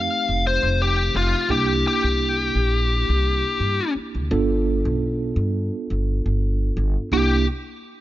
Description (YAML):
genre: straight-eighth soul blues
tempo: 85 BPM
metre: 4/4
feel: swing 55% on 16ths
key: C mixolydian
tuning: A4 = 440 Hz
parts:
  - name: biting lead guitar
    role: melody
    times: 0.0-7.5 s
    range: F4 to F5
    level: -22 LUFS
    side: left 4 dB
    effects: overdrive
  - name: mellow tine electric piano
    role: accompaniment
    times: 0.0-7.5 s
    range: A3 to A4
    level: -26 LUFS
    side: right 4 dB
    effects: medium stereo tremolo
  - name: upright bass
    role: bass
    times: 0.0-7.4 s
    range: F1 to G2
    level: -22 LUFS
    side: equal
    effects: none
room: small room reverb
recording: nothing above 7.7 kHz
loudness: -19 LUFS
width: side -14 dB against mid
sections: 0.0-7.1 A section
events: none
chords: 0.0 F9; 1.5 C9; 4.3 G9; 7.1 C9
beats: 0.09 0.80 | 1.50 2.20 2.90 3.61 | 4.31 5.01 5.71 6.42 | 7.12